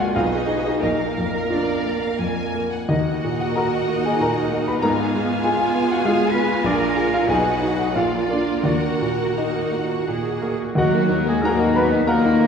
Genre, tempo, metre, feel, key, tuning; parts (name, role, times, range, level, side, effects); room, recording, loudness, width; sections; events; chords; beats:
classical, romantic movement for piano and orchestra; 82-100 BPM; 3/4; rubato; Eb minor; A4 = 440 Hz
clear baby grand piano; melody; 0.0-12.5 s; Bb1 to Cb6; -21 LUFS; equal
rich symphonic violin section; melody; 0.0-12.5 s; Gb4 to Ab5; -32 LUFS; left 2 dB
warm symphonic violin section; second line; 0.0-12.5 s; Eb4 to F5; -30 LUFS; left 3 dB
rich symphonic viola section; accompaniment; 0.0-12.5 s; F#3 to Bb4; -27 LUFS; right 2 dB
warm chamber cello section; bass; 0.0-12.5 s; Gb3 to Cb5; -26 LUFS; right 2 dB
clear clarinet; second line; 10.8-12.5 s; Gb4 to Cb5; -26 LUFS; right 2 dB
clear oboe; second line; 10.8-12.5 s; Gb4 to Cb5; -28 LUFS; right 2 dB
mellow French horn section; sustained chords; 10.8-12.5 s; Bb3 to Eb4; -26 LUFS; left 6 dB
clear chamber double bass section; bass; 10.8-12.5 s; Eb2; -26 LUFS; left 1 dB
mellow bassoon; accompaniment; 11.4-12.5 s; F4 to Gb4; -26 LUFS; left 2 dB
wet scoring stage reverb, RT60 1.5 s; heard from further back in the room; -18 LUFS; side -6 dB against mid
0.0-10.8 A section; 10.8-12.5 B section
0.2 B; 0.8 Bb; 2.9 Ebm; 4.8 Fdim/Ab; 6.7 Bb7; 7.3 B; 7.9 Bb; 8.7 Ebm
0.15 | 0.83 1.52 2.20 | 2.90 3.57 4.21 | 4.83 5.44 6.05 | 6.66 7.28 7.95 | 8.65 9.37 10.07 | 10.77 11.44 12.08